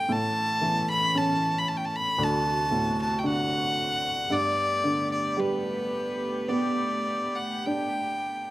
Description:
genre	celtic folk, Celtic slow air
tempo	50-58 BPM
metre	4/4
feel	rubato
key	G major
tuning	A4 = 440 Hz
part	rich fiddle	melody	0.0-8.5 s	B4 to B5	-26 LUFS	equal	plate reverb
part	felt-muted upright piano	accompaniment	0.0-8.5 s	D2 to D4	-29 LUFS	equal	plate reverb
part	rich studio string section	sustained chords	0.0-8.5 s	D2 to G4	-35 LUFS	right 1 dB	plate reverb
room	moderate small room reverb, RT60 0.5 s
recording	rough home demo mix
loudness	-24 LUFS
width	side -16 dB against mid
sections	0.0-8.5 A section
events	none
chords	0.1 A; 2.2 D7; 4.3 Gadd9

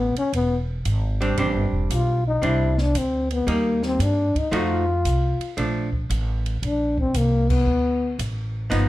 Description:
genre	jazz, small-group swing and bop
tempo	115 BPM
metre	4/4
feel	swing 68% on 8ths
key	unclear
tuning	A4 = 438 Hz
part	breathy trombone	melody	0.0-8.2 s	Bb3 to F4	-23 LUFS	left 2 dB	none
part	upright bass	bass	0.0-8.9 s	E1 to G2	-23 LUFS	equal	none
part	open jazz drum kit	drums	0.2-8.9 s	crash cymbal, hi-hat, kick drum, ride cymbal, snare drum	-32 LUFS	equal	none
part	archtop guitar, miked and amplified	accompaniment	1.2-8.9 s	F3 to Gb4	-25 LUFS	right 1 dB	none
room	light reverb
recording	dark, warm production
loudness	-20 LUFS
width	side -16 dB against mid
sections	0.0-8.9 A section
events	band accent 7.4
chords	0.3 E7; 1.4 Am11 (rootless); 3.5 Ebmaj7; 4.5 F7b9; 5.6 Bbmaj7; 7.7 D5

